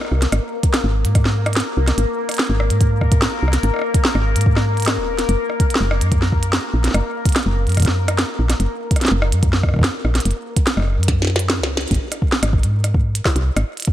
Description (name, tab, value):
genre	IDM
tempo	145 BPM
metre	4/4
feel	straight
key	unclear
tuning	A4 = 439 Hz
part	glitchy drum kit	drums	0.0-13.9 s	hi-hat, rim click, snare drum	-21 LUFS	right 1 dB	small room ambience, digital delay
part	bubbling stepped-filter texture	texture	0.0-11.9 s	Bb3 to Bb4	-26 LUFS	left 4 dB	chorus, built-in reverb
part	woody FM bass	bass	0.1-13.6 s	Eb1 to Ab2	-18 LUFS	equal	none
part	electronic kick drum	drums	0.6-13.9 s	none	-17 LUFS	equal	small room ambience
room	light reverb, digital ambience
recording	none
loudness	-16 LUFS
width	side -13 dB against mid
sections	0.0-11.9 A section; 11.9-13.9 A section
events	drum fill 11.1-11.9; band accent 11.8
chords	0.0 Absus2; 5.3 Gb; 11.9 N.C.